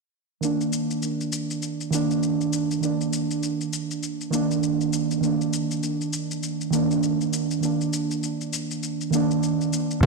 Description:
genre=organic downtempo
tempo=100 BPM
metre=4/4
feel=swing 60% on 16ths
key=C minor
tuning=A4 = 440 Hz
part: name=muted felt-like synth keys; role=accompaniment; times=0.4-10.1 s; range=Eb3 to D4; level=-24 LUFS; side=right 2 dB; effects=chorus, sidechain pumping, tape echo
part: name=shaker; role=drums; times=0.4-10.1 s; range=none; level=-36 LUFS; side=left 8 dB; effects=overdrive
part: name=fretless electric bass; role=bass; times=10.0-10.1 s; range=C2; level=-17 LUFS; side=equal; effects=analog chorus
part: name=electronic kick drum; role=drums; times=10.0-10.1 s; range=none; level=-17 LUFS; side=equal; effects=overdrive, soft clipping on kick
room=moderate echo chamber reverb, RT60 2.2 s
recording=blown-out, overdriven recording, overdrive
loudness=-23 LUFS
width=side -2 dB against mid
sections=0.4-10.1 A section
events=none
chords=0.4 Cm7 (rootless)

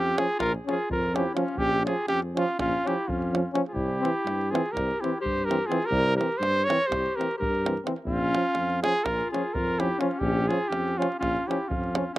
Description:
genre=balkan folk, Balkan brass band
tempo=250 BPM (eighths)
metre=9/8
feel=straight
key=Bb dorian sharp4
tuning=A4 = 440 Hz
part: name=mellow cornet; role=melody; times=0.0-12.2 s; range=F4 to Db5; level=-27 LUFS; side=right 1 dB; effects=slapback echo
part: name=clear clarinet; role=second line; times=0.0-12.2 s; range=Db4 to Bb4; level=-33 LUFS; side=left 4 dB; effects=none
part: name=warm tuba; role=bass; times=0.0-12.1 s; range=Bb1 to G2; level=-30 LUFS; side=equal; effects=none
part: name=davul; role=percussion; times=0.0-12.2 s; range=none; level=-35 LUFS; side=right 2 dB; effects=slapback echo
part: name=clear trombone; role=accompaniment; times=0.2-12.2 s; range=C4 to Db4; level=-31 LUFS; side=left 4 dB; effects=slapback echo
part: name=warm euphonium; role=accompaniment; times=0.2-12.0 s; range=E3 to F3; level=-32 LUFS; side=right 4 dB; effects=none
room=little or no reverb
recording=recorded outdoors, with no room sound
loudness=-24 LUFS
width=side -16 dB against mid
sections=0.0-12.2 A section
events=none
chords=0.0 Bbm; 3.7 C; 8.1 Bbm

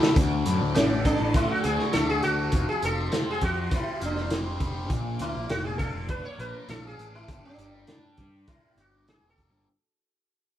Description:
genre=psychedelic rock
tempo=101 BPM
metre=4/4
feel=straight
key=unclear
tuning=A4 = 440 Hz
part: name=clear studio string section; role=sustained chords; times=0.0-9.7 s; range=Bb3 to D6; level=-40 LUFS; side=right 1 dB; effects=none
part: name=overdriven electric guitar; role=riff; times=0.0-9.7 s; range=D2 to Bb4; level=-32 LUFS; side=left 2 dB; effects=phaser
part: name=crunchy breakbeat drum kit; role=drums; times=0.0-9.5 s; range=hi-hat, kick drum, snare drum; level=-26 LUFS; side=equal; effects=none
part: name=fuzz picked electric bass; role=bass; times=0.2-9.7 s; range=E1 to G2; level=-30 LUFS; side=left 1 dB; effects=overdrive
part: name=sitar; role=melody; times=0.7-9.7 s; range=C#4 to C#5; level=-29 LUFS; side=equal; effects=none
room=moderate studio ambience, RT60 0.5 s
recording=band playing live in one room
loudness=-24 LUFS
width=side -11 dB against mid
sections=0.2-9.7 A section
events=drum fill 0.0; fade-out 0.2-9.7; sitar solo 0.2-9.7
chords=0.2 D; 2.5 Fsus2; 4.9 Bb; 7.3 Gm

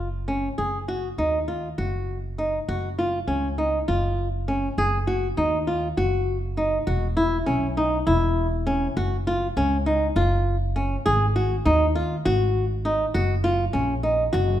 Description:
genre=contemporary instrumental, chamber music in an uneven meter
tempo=201 BPM (eighths)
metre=7/8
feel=straight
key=unclear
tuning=A4 = 439 Hz
part: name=flamenco guitar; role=arpeggios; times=0.0-14.6 s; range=Db4 to Ab4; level=-23 LUFS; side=equal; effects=none
part: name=upright bass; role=bass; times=0.0-14.6 s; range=E1 to Eb2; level=-26 LUFS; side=equal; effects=none
room=moderate scoring stage reverb, RT60 1.6 s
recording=minimal, uncompressed stereo recording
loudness=-21 LUFS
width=side -12 dB against mid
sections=0.0-6.9 A section; 6.9-14.6 B section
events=none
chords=0.0 Gb5; 0.6 N.C.; 2.7 Gb5; 4.8 N.C.; 6.9 E5; 9.0 Gb5; 11.1 Ab5; 13.1 Ebm7/Gb

